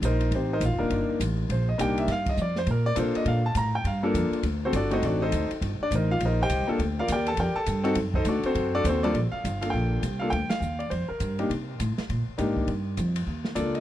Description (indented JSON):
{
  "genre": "jazz piano trio",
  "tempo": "204 BPM",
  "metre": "4/4",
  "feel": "swing 62% on 8ths",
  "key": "G minor",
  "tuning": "A4 = 440 Hz",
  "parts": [
    { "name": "clear concert grand piano", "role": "melody", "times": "0.0-13.8 s", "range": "G2 to Bb5", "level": "-26 LUFS", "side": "left 1 dB", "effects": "tape echo" },
    { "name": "upright bass", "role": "bass", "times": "0.0-13.8 s", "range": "Eb1 to C3", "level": "-27 LUFS", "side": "equal", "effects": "none" },
    { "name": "open jazz drum kit", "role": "drums", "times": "0.0-13.8 s", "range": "hi-hat, kick drum, ride cymbal, snare drum", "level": "-36 LUFS", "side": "equal", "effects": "none" }
  ],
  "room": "little or no reverb",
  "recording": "dry, close 1970s-style studio recording",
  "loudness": "-24 LUFS",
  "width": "side -13 dB against mid",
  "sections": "0.0-9.1 A section; 9.1-13.8 B section",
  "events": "grand piano solo 0.0-9.1; band accent 10.5",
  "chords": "0.0 Cm7; 2.1 Gm7; 4.4 D7b9; 5.6 Cm7; 6.8 D7b9; 9.1 Gm7; 11.5 Cm7; 12.7 Gm7"
}